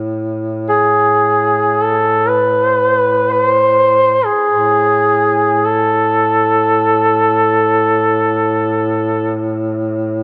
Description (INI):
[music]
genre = caucasian folk, Caucasian lament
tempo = free time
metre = none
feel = none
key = A harmonic minor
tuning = A4 = 440 Hz
[part]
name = warm duduk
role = drone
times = 0.0-10.2 s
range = A2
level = -22 LUFS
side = equal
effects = none
[part]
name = warm duduk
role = melody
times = 0.7-9.4 s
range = G#4 to C5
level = -14 LUFS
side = equal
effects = none
[sound]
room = wet plate reverb, RT60 2.8 s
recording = heard from further back in the room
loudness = -14 LUFS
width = mono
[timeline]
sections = 0.0-10.2 A section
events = none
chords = none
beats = free time